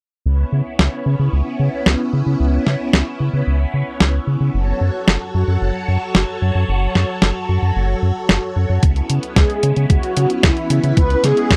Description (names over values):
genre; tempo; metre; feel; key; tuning
italo disco; 112 BPM; 4/4; straight; C# minor; A4 = 441 Hz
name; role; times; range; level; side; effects
phased string machine; sustained chords; 0.3-11.6 s; F#3 to C#5; -26 LUFS; equal; ensemble chorus, phaser, vintage 12-bit sampler grit
round analog bass; bass; 0.3-11.6 s; F#1 to C#3; -19 LUFS; equal; none
clean 12-bit digital drum machine; drums; 0.8-11.6 s; hi-hat, snare drum; -18 LUFS; equal; none
electronic kick drum; drums; 8.8-11.6 s; none; -17 LUFS; equal; none
mellow synth brass; melody; 9.4-11.6 s; E4 to B4; -21 LUFS; equal; chorus
room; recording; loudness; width
little or no reverb; dry, close 1970s-style studio recording; -17 LUFS; mono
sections
0.3-11.6 A section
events
none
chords
0.3 C#m7; 4.5 F#m; 8.8 C#m7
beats
| 0.26 0.79 1.33 1.86 | 2.40 2.93 3.47 4.00 | 4.54 5.08 5.61 6.15 | 6.68 7.22 7.75 8.29 | 8.83 9.36 9.90 10.43 | 10.97 11.51